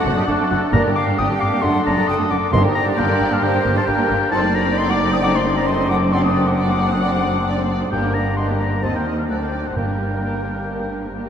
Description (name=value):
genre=quick classical-period movement for symphony orchestra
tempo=133 BPM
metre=4/4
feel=straight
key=G minor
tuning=A4 = 441 Hz
part: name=muted studio violin section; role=melody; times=0.0-11.3 s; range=G4 to Eb5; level=-29 LUFS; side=equal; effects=none
part: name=concert flute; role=second line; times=0.0-11.1 s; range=F#4 to G5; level=-27 LUFS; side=right 2 dB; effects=none
part: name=mellow clarinet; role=second line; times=0.0-11.3 s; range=C4 to F#4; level=-29 LUFS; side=right 3 dB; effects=none
part: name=muted studio violin section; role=second line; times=0.0-11.3 s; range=G4 to F#5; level=-28 LUFS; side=equal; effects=none
part: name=warm oboe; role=second line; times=0.0-11.2 s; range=D5 to Eb6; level=-23 LUFS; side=left 3 dB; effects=none
part: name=muted studio viola section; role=accompaniment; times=0.0-11.3 s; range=D3 to D#4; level=-27 LUFS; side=right 3 dB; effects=none
part: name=warm bassoon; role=accompaniment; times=0.0-11.3 s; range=A3 to D4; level=-29 LUFS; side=left 4 dB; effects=none
part: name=muted studio double bass section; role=bass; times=0.1-11.3 s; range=F#1 to Eb2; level=-24 LUFS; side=equal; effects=none
part: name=muted symphonic cello section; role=bass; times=0.1-11.3 s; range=D2 to G2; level=-25 LUFS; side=equal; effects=none
part: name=mellow French horn section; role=sustained chords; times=0.7-10.9 s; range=A3 to Eb4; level=-28 LUFS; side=equal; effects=none
part: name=timpani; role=percussion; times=0.7-3.2, 7.9-10.4 s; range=G2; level=-26 LUFS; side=right 1 dB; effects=none
room=wet huge ambient reverb, RT60 8.1 s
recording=in a vast, echoing space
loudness=-16 LUFS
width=side -8 dB against mid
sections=0.0-11.3 A section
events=none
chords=0.0 D7/F#; 0.7 Gm; 1.6 D/F#; 2.5 Gm; 4.3 F#dim7; 6.1 D7/F#; 7.9 Gm; 8.8 Cm/Eb; 9.3 D7; 9.8 Gm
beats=0.28 | 0.73 1.18 1.63 2.08 | 2.53 2.97 3.42 3.87 | 4.31 4.76 5.21 5.66 | 6.11 6.56 7.01 7.46 | 7.92 8.38 8.83 9.29 | 9.76 10.22 10.69 11.15